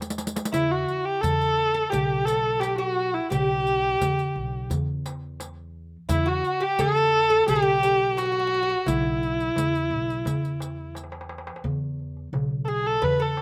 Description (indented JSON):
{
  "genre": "Turkish makam ensemble",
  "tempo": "86 BPM",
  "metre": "4/4",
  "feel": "straight",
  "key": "E makam nihavent",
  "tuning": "A4 = 441 Hz",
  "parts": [
    { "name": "upright bass", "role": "bass", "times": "0.0-13.4 s", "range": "B1 to E2", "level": "-35 LUFS", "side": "equal", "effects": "none" },
    { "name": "darbuka", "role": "percussion", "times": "0.0-13.4 s", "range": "none", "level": "-32 LUFS", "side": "equal", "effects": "none" },
    { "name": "riq", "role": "percussion", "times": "0.0-11.1 s", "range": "none", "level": "-36 LUFS", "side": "equal", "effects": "none" },
    { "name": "rich kamancheh", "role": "melody", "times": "0.5-13.4 s", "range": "E4 to B4", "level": "-26 LUFS", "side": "equal", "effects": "slapback echo" },
    { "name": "oud", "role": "second line", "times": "0.5-13.4 s", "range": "E4 to B4", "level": "-33 LUFS", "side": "equal", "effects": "slapback echo" }
  ],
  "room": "little or no reverb",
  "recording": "recorded outdoors, with no room sound",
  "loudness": "-24 LUFS",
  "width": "mono",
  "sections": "0.0-11.6 A section; 11.6-13.4 B section",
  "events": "drum fill 0.0-0.5, 10.9-11.6",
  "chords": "none",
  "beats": "| 0.53 1.22 1.92 2.62 | 3.31 4.01 4.70 5.40 | 6.09 6.79 7.48 8.18 | 8.87 9.56 10.26 10.95 | 11.64 12.33 13.02"
}